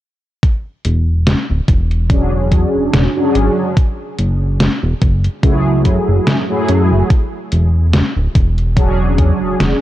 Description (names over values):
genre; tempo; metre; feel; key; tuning
vaporwave; 72 BPM; 4/4; swing 55% on 16ths; unclear; A4 = 440 Hz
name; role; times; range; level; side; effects
detuned 8-bit digital drum machine; drums; 0.4-9.8 s; hi-hat, snare drum; -17 LUFS; equal; overdrive
electronic kick drum; drums; 0.4-9.4 s; none; -13 LUFS; equal; overdrive
chorused synth bass; bass; 0.9-9.7 s; D1 to F#2; -14 LUFS; equal; none
mellow synth brass; accompaniment; 2.1-9.8 s; F#3 to G#4; -17 LUFS; equal; ensemble chorus, cassette tape, analog delay
room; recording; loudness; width
little or no reverb; dark, warm production, cassette tape; -12 LUFS; side -14 dB against mid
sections
0.4-9.8 A section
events
none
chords
0.4 E13; 3.8 F#m9; 7.1 E13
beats
| 0.43 1.27 2.10 2.94 | 3.77 4.60 5.43 6.27 | 7.10 7.93 8.77 9.60